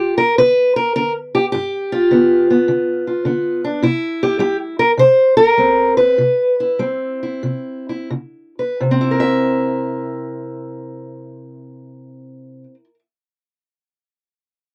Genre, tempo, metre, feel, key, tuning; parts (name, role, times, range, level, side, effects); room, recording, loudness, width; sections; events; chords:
acoustic country blues, solo or duo; 83-105 BPM; 4/4; swing 68% on 8ths; C mixolydian; A4 = 440 Hz
fingerpicked steel-string acoustic guitar; solo; 0.0-13.0 s; G2 to E5; -17 LUFS; equal
moderate booth ambience, RT60 0.2 s; dark, warm production; -16 LUFS; mono
0.0-8.8 A section; 8.8-11.7 B section
slowing down 3.8-8.8
0.0 G7; 3.8 C7; 8.1 Bsus2/C#; 8.8 C7